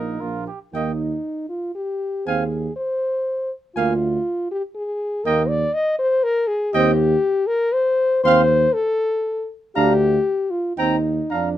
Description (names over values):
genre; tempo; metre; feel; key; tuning
classical, brass quintet; 119 BPM; 3/4; rubato; Eb major; A4 = 440 Hz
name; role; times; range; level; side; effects
clear cornet; melody; 0.0-11.5 s; Bb4 to C6; -26 LUFS; left 5 dB; none
mellow trumpet; second line; 0.0-11.5 s; Eb4 to G5; -24 LUFS; right 8 dB; none
mellow French horn; accompaniment; 0.0-11.6 s; D4 to Eb5; -20 LUFS; left 2 dB; none
warm trombone; accompaniment; 0.0-11.5 s; Bb3 to D4; -25 LUFS; right 4 dB; none
warm tuba; bass; 0.0-11.6 s; Bb1 to F2; -23 LUFS; right 4 dB; none
room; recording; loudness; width
light reverb; none; -18 LUFS; side -12 dB against mid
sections
0.7-11.6 A section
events
none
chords
0.2 Bb; 0.7 Eb; 2.3 Fm7/Eb (rootless); 3.8 Bb7/D (rootless); 5.3 Eb5; 6.7 Cm/Eb; 8.2 F7/Eb (rootless); 9.8 Bb/D (rootless); 10.8 Cm7/Eb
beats
0.21 | 0.74 1.25 1.76 | 2.27 2.77 3.28 | 3.77 4.27 4.76 | 5.26 5.75 6.25 | 6.75 7.24 7.74 | 8.24 8.75 9.25 | 9.76 10.26 10.78 | 11.32